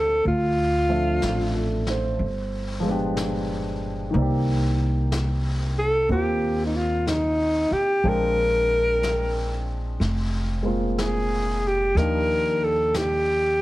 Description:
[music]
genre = jazz ballad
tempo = 62 BPM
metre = 4/4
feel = swing 66% on 8ths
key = unclear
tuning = A4 = 442 Hz
[part]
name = breathy alto saxophone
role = melody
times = 0.0-13.6 s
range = Eb4 to Bb4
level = -22 LUFS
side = equal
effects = plate reverb
[part]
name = warm grand piano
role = accompaniment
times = 0.0-13.6 s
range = Eb3 to G5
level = -28 LUFS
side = equal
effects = none
[part]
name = upright bass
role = bass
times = 0.0-13.6 s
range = F1 to Eb2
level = -26 LUFS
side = equal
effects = none
[part]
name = vintage brush drum kit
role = drums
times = 0.2-13.6 s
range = brushed snare drum, hi-hat, snare drum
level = -35 LUFS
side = left 2 dB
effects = none
[sound]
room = light reverb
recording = heavily compressed radio sound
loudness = -21 LUFS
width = side -17 dB against mid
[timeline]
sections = 0.0-13.6 A section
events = none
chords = 0.2 Dm7; 2.2 G7b9; 4.1 Cm9; 8.0 Bb13; 12.0 Ebmaj9

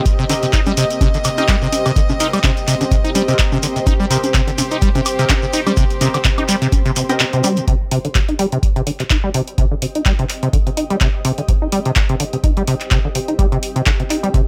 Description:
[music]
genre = acid house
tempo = 126 BPM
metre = 4/4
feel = swing 56% on 16ths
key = C minor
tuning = A4 = 441 Hz
[part]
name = rich chamber string section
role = sustained chords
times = 0.0-7.7 s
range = C3 to Eb5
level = -28 LUFS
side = equal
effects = sidechain pumping, low-pass filter
[part]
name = granular cloud pad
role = texture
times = 0.0-14.5 s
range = C4 to Eb5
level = -28 LUFS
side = equal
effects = built-in reverb, sidechain pumping
[part]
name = electronic kick drum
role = drums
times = 0.1-14.4 s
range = none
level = -19 LUFS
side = equal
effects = overdrive
[part]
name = punchy analog drum machine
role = drums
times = 0.1-14.4 s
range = congas, handclaps, hi-hat, woodblock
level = -24 LUFS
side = equal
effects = none
[part]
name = shekere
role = percussion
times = 0.1-7.7 s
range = none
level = -29 LUFS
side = equal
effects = none
[part]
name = acid bass, saw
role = riff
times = 0.2-14.4 s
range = C3 to Eb4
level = -21 LUFS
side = equal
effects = overdrive, lush chorus, cassette tape
[part]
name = band-passed chord stab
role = stabs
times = 0.3-7.7 s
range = C4 to Eb5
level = -30 LUFS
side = equal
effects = phaser, analog delay
[sound]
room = digital ambience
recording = dry, gritty hardware recording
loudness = -16 LUFS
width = mono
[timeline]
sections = 0.0-7.7 A section; 7.7-14.5 B section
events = drop 0.0-7.7; kick drops out 7.2-7.7; fade-in on ambient pad 7.7-14.5; filter sweep on acid bass 7.7-14.5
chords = 0.0 Cm7; 7.7 Cm

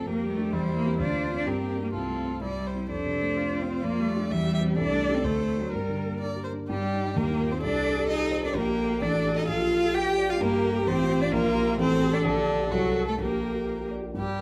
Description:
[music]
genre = quick classical-period movement for piano quartet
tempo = 129 BPM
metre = 2/4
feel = straight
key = F major, G minor from 4.8 s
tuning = A4 = 437 Hz
[part]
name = rich violin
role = melody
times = 0.0-14.4 s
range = D4 to G5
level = -35 LUFS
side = equal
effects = none
[part]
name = clear cello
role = second line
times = 0.0-13.9 s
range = D3 to G4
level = -30 LUFS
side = equal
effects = none
[part]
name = dark concert grand piano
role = accompaniment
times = 0.0-14.4 s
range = A1 to D5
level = -32 LUFS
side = equal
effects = none
[part]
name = rich viola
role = accompaniment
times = 0.0-14.4 s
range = G3 to Bb4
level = -35 LUFS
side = equal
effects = none
[sound]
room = moderate recital hall reverb, RT60 1.4 s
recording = close, detailed microphones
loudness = -27 LUFS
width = mono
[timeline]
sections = 0.0-6.7 A section; 6.7-14.2 B section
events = none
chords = 0.1 Gm7/F; 0.5 C/E; 1.0 Dm7; 1.5 Gm; 1.9 F/C; 2.4 C; 2.9 F; 3.8 Gm7/F; 4.3 C/E; 4.8 Am7b5/C; 5.2 D7; 5.7 Gm; 6.7 G5; 7.2 Eb; 7.6 C5; 8.6 Gm/Bb; 9.0 D/A; 9.5 Gm/Bb; 10.4 Gm; 10.9 F/A; 11.3 Bb5; 11.8 Am6; 12.3 Gm/Bb; 12.7 F#dim/C; 13.2 Gm/Bb

